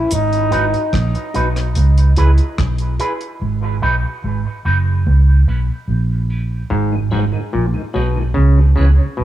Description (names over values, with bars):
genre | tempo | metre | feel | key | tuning
dub reggae | 73 BPM | 4/4 | straight | G# minor | A4 = 440 Hz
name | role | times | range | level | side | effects
clear trombone | melody | 0.0-0.9 s | D#4 to E4 | -21 LUFS | left 3 dB | dub echo
vintage muted fingered electric bass | bass | 0.0-9.2 s | F#1 to C#2 | -14 LUFS | right 1 dB | none
deep reggae drum kit | drums | 0.1-3.4 s | hi-hat, kick drum, rim click | -24 LUFS | equal | cassette tape
electric guitar with an envelope filter | accompaniment | 0.5-9.0 s | C#4 to B4 | -24 LUFS | right 2 dB | spring reverb, high-pass filter, cassette tape, dub echo
overdriven clav | riff | 6.7-9.2 s | G#2 to C#3 | -20 LUFS | left 5 dB | cassette tape, dub echo
tonewheel organ | accompaniment | 6.9-9.1 s | G#2 to C#4 | -26 LUFS | right 2 dB | overdrive, chorus vibrato, slow rotary speaker, cassette tape
room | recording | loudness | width
small room ambience | home recording on cassette | -14 LUFS | side -13 dB against mid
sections
0.0-9.2 A section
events
break 0.0-6.7; filter sweep on clean electric guitar 0.1-9.2; part muted 3.4-9.2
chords
0.1 G#m7; 1.8 C#m7; 3.4 G#m7; 5.1 C#m7; 6.7 G#m7; 8.3 C#m7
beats
| 0.11 0.93 1.76 2.58 | 3.40 4.23 5.05 5.88 | 6.70 7.53 8.35 9.17